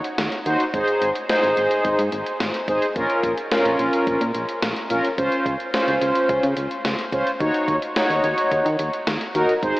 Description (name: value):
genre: synth-pop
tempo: 108 BPM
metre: 4/4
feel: straight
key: Eb dorian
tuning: A4 = 437 Hz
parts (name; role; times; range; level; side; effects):
- gated 80s digital drum machine; drums; 0.0-9.8 s; hi-hat, kick drum, snare drum; -28 LUFS; equal; gated reverb, gated reverb snare
- solid FM bass; bass; 0.2-9.7 s; Ab1 to Eb3; -27 LUFS; equal; none
- analog synth brass; accompaniment; 0.5-9.8 s; Db4 to Db5; -20 LUFS; equal; chorus
room: wet huge ambient reverb, RT60 7.4 s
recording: dreamy mix soaked in reverb, AM radio sound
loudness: -19 LUFS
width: side -19 dB against mid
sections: 0.0-9.8 A section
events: none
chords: 0.0 Ebm; 0.7 Ab; 3.0 Bbm; 5.2 Dbmaj7; 7.4 Ebm7